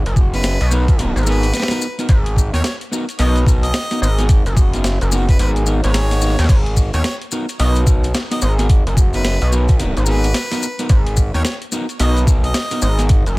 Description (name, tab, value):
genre	glitch hop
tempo	109 BPM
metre	4/4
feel	swing 62% on 16ths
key	G# minor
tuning	A4 = 440 Hz
part	gritty driven synth bass	bass	0.0-13.4 s	F#1 to D#2	-16 LUFS	equal	tube saturation
part	boom bap sampler-style drum kit	drums	0.1-13.4 s	crash cymbal, hi-hat, snare drum	-24 LUFS	equal	none
part	electronic kick drum	drums	0.2-13.2 s	none	-14 LUFS	equal	none
part	maracas	percussion	0.2-13.4 s	none	-29 LUFS	left 5 dB	none
part	clear harmonica	melody	0.3-13.0 s	B4 to D#5	-27 LUFS	equal	digital delay
part	electric guitar at the edge of break-up	stabs	0.3-13.1 s	B3 to C#5	-24 LUFS	equal	sidechain pumping, digital delay
room	little or no reverb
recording	none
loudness	-14 LUFS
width	side -22 dB against mid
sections	0.0-13.4 A section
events	kick drops out 5.4-6.5; drum fill 6.1-6.5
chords	0.0 G#m9